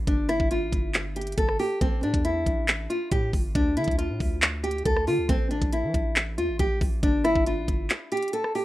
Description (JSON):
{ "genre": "hip hop, trap", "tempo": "138 BPM", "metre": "4/4", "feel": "half-time", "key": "A minor", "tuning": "A4 = 440 Hz", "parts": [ { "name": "long sustained 808-style bass", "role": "bass", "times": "0.0-7.9 s", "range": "G1 to E3", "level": "-31 LUFS", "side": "equal", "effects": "none" }, { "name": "nylon-string guitar", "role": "melody", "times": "0.1-8.6 s", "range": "C4 to A4", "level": "-26 LUFS", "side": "equal", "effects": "tape echo" }, { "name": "trap drum kit", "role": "drums", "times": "0.1-8.6 s", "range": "handclaps, hi-hat, kick drum, rim click", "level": "-26 LUFS", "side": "equal", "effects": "vintage 12-bit sampler grit" } ], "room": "little or no reverb", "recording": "rough home demo mix", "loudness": "-23 LUFS", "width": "side -16 dB against mid", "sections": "0.0-8.6 A section", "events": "break 7.9-8.6", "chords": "0.1 Fsus2/G; 1.8 A5; 3.6 Dm; 5.3 A5; 7.0 Fsus2/G" }